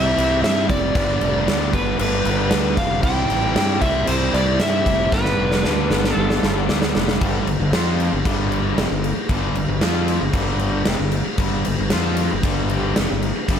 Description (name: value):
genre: classic rock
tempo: 115 BPM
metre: 4/4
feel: straight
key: G mixolydian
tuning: A4 = 438 Hz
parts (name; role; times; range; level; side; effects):
- overdriven slide guitar; melody; 0.0-6.7 s; B4 to G5; -22 LUFS; equal; none
- string machine, cellos; sustained chords; 0.0-7.2, 11.4-13.6 s; D4 to G5; -32 LUFS; equal; none
- cranked stack guitar; riff; 0.0-13.6 s; F2 to F4; -25 LUFS; left 11 dB; overdrive
- raw garage guitar; riff; 0.0-13.6 s; F2 to G4; -26 LUFS; right 11 dB; overdrive
- fuzz fingered electric bass; bass; 0.0-13.6 s; F1 to G2; -23 LUFS; equal; overdrive
- huge arena drum kit; drums; 0.2-13.6 s; crash cymbal, kick drum, snare drum; -22 LUFS; equal; none
room: light reverb, studio ambience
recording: none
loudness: -17 LUFS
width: side -8 dB against mid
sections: 0.0-7.2 A section; 7.2-13.6 B section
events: drum fill 5.1-7.2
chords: 0.0 C; 1.0 G; 3.0 C; 5.1 G